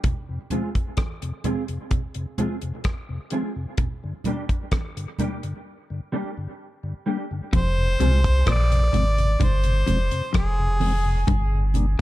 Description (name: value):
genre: dub reggae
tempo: 64 BPM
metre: 4/4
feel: straight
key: unclear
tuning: A4 = 440 Hz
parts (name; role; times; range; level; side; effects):
- damped 70s drum kit; drums; 0.0-12.0 s; hi-hat, kick drum, rim click; -25 LUFS; equal; none
- congas; percussion; 0.0-12.0 s; none; -31 LUFS; right 4 dB; none
- mellow tonewheel organ; accompaniment; 0.3-11.9 s; F2 to D4; -29 LUFS; left 2 dB; slow rotary speaker, low-pass filter
- mellow electric guitar; accompaniment; 0.5-8.2 s; G3 to Ab4; -31 LUFS; right 2 dB; ensemble chorus, low-pass filter, dub echo
- electric guitar at the edge of break-up; riff; 7.5-12.0 s; F2 to C3; -30 LUFS; left 4 dB; wide subtle chorus, dub echo
- warm sub bass; bass; 7.5-12.0 s; F1 to C2; -21 LUFS; equal; none
- clear harmonica; melody; 7.6-11.3 s; Ab4 to D5; -26 LUFS; equal; dub echo
room: studio reverb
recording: dark, warm production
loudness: -21 LUFS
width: side -16 dB against mid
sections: 0.0-7.5 A section; 7.5-12.0 B section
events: break 5.7-7.5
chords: 0.0 Fm; 3.8 Gm; 7.5 Fm; 11.3 Gm